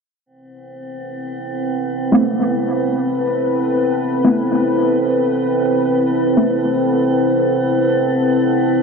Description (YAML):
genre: techno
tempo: free time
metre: none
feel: none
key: A minor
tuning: A4 = 440 Hz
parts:
  - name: deep dark ambient pad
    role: sustained chords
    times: 1.2-8.8 s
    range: C4 to B4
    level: -18 LUFS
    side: left 1 dB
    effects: chorus, built-in reverb
  - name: metallic inharmonic drone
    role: texture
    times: 0.7-8.8 s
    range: C4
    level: -21 LUFS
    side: right 2 dB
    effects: chorus, built-in reverb
  - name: deep mellow chord stab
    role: stabs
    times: 2.1-6.5 s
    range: A3 to E4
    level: -18 LUFS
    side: equal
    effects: chorus, phaser, dub echo
room: wet lush hall reverb, RT60 2.7 s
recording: dark, warm production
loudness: -14 LUFS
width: side -5 dB against mid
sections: 0.3-8.8 A section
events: filter sweep on synth stab 0.3-8.8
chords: 0.3 Amadd9